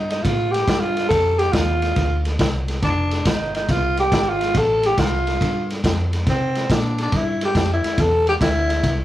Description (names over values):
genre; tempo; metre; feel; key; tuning
electric blues shuffle; 140 BPM; 4/4; swing 67% on 8ths; F major; A4 = 442 Hz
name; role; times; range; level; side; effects
growling tenor saxophone; melody; 0.0-9.0 s; C4 to A4; -20 LUFS; equal; none
vintage muted fingered electric bass; bass; 0.0-9.0 s; F1 to C3; -23 LUFS; equal; none
crunchy breakbeat drum kit; drums; 0.1-9.0 s; kick drum, ride cymbal, snare drum; -22 LUFS; equal; none
room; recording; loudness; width
moderate small room reverb, RT60 0.6 s; rough rehearsal-room recording; -17 LUFS; side -14 dB against mid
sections
0.0-9.0 A section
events
none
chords
0.0 Fadd9; 6.3 C9